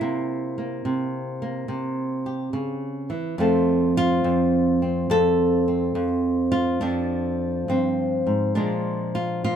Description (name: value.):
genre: solo jazz.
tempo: 70 BPM.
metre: 4/4.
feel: swing 67% on 8ths, rubato.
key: F major.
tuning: A4 = 440 Hz.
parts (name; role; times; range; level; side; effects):
flamenco guitar; solo; 0.0-9.6 s; F2 to A4; -21 LUFS; equal; none.
room: moderate club reverb, RT60 0.8 s.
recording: dark, warm production.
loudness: -21 LUFS.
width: side -8 dB against mid.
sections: 0.0-9.6 A section.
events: none.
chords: 0.0 C7b9; 3.4 F; 6.8 Fm; 8.6 Bb7.